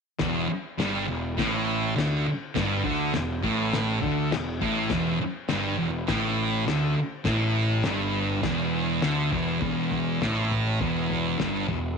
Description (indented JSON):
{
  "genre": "garage rock duo or trio",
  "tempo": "102 BPM",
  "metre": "4/4",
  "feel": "straight",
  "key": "unclear",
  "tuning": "A4 = 441 Hz",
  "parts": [
    { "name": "thick fuzz guitar", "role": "riff", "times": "0.2-11.9 s", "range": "E2 to D3", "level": "-25 LUFS", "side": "right 1 dB", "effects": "distortion" },
    { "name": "fuzz picked electric bass", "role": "bass", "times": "0.2-12.0 s", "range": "E1 to D2", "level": "-33 LUFS", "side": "equal", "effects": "overdrive, tube saturation" },
    { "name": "cloth-damped thuddy drum kit", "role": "drums", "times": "0.2-11.8 s", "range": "crash cymbal, kick drum, snare drum, toms", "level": "-32 LUFS", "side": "left 4 dB", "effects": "none" }
  ],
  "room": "light reverb, small room ambience",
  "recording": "1960s-style stereo",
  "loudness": "-24 LUFS",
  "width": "side -5 dB against mid",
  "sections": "0.2-9.6 A section; 9.6-12.0 B section",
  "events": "none",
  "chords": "0.2 Emadd11; 9.6 E5",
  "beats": "| 0.20 0.79 1.38 1.97 | 2.56 3.15 3.74 4.33 | 4.92 5.51 6.10 6.68 | 7.27 7.86 8.45 9.04 | 9.63 10.22 10.80 11.39"
}